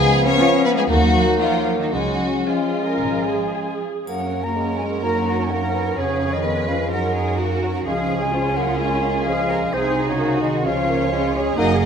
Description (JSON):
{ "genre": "classical, dramatic, fast romantic movement for symphony orchestra", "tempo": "110-130 BPM", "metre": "4/4", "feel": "rubato", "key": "F# major", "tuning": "A4 = 436 Hz", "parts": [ { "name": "concert flute", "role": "second line", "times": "0.0-11.9 s", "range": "B#4 to A#5", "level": "-27 LUFS", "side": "left 2 dB", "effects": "none" }, { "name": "mellow clarinet", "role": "second line", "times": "0.0-11.7 s", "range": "B3 to D#4", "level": "-28 LUFS", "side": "left 3 dB", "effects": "none" }, { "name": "warm symphonic violin section", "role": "second line", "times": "0.0-11.9 s", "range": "D#4 to C#5", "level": "-26 LUFS", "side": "left 3 dB", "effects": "none" }, { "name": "mellow bassoon", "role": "accompaniment", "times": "0.0-11.7 s", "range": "E#3 to C#4", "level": "-26 LUFS", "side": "right 2 dB", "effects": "none" }, { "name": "warm French horn section", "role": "sustained chords", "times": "0.0-11.9 s", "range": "B#2 to C#4", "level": "-26 LUFS", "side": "left 2 dB", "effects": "none" }, { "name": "rich symphonic double bass section", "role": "bass", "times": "0.0-11.9 s", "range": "F#1 to F#2", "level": "-25 LUFS", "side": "right 3 dB", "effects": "none" }, { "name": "warm symphonic cello section", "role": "bass", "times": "0.0-11.9 s", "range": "D#3 to B4", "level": "-26 LUFS", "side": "right 2 dB", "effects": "none" }, { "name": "rich symphonic violin section", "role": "melody", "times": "0.4-11.9 s", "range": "G#4 to G#5", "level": "-30 LUFS", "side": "left 1 dB", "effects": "none" }, { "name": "dark studio viola section", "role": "accompaniment", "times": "0.4-11.9 s", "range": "A#3 to A#4", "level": "-28 LUFS", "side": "right 2 dB", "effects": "none" }, { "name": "triangle", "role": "percussion", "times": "4.1-5.0 s", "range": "none", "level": "-48 LUFS", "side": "left 3 dB", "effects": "none" } ], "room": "wet scoring stage reverb, RT60 1.8 s", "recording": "minimal, uncompressed stereo recording", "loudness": "-18 LUFS", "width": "side -7 dB against mid", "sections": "0.0-4.1 A section; 4.1-11.9 B section", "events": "none", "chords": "0.0 C#7; 0.9 D#m; 1.9 C#; 4.1 F#; 6.0 C#7/E#; 6.9 F#; 7.9 C#; 9.7 G#7/B#; 10.7 C#" }